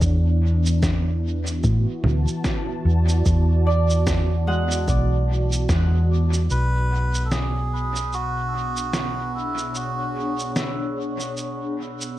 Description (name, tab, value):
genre	ambient dub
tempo	74 BPM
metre	4/4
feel	swing 58% on 16ths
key	B dorian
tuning	A4 = 440 Hz
part	warm analog pad	sustained chords	0.0-12.2 s	B2 to A5	-28 LUFS	equal	chorus
part	hollow-body short-scale fingered electric bass	bass	0.0-12.2 s	B1 to A2	-20 LUFS	equal	none
part	electronic kick drum	drums	0.0-5.9 s	none	-25 LUFS	equal	none
part	electronic shaker, snare drum and congas	drums	0.0-12.1 s	none	-29 LUFS	right 1 dB	dub echo
part	concert harp	arpeggios	3.7-6.6 s	G#3 to F#5	-29 LUFS	right 3 dB	low-pass filter, dub echo
part	melodica	melody	6.5-10.5 s	E4 to B4	-28 LUFS	right 2 dB	dub echo
room	light reverb, digital ambience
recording	echo-heavy mix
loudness	-20 LUFS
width	side -14 dB against mid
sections	0.0-6.5 A section; 6.5-12.2 B section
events	none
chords	0.0 E7sus4; 6.5 Bm69